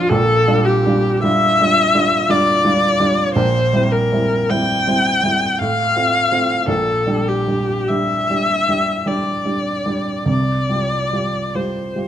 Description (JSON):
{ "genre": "classical, romantic duo for viola and grand piano", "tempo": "47-57 BPM", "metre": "3/4", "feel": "rubato", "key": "unclear", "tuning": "A4 = 440 Hz", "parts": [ { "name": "rich viola", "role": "melody", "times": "0.0-12.1 s", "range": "F4 to G5", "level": "-17 LUFS", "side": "left 2 dB", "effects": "none" }, { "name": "dark baby grand piano", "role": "accompaniment", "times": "0.0-12.1 s", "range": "Bb1 to G4", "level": "-19 LUFS", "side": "right 2 dB", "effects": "none" } ], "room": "moderate recital hall reverb, RT60 1.6 s", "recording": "close, detailed microphones", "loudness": "-14 LUFS", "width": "side -10 dB against mid", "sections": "0.0-12.1 A section", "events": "none", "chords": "0.1 Gm7/Bb; 3.4 C7/Bb; 5.6 F/A; 6.7 Gm/Bb; 10.3 Csus4", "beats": "| 0.09 1.22 2.29 | 3.36 4.50 5.59 | 6.68 7.89 9.08 | 10.29 11.55" }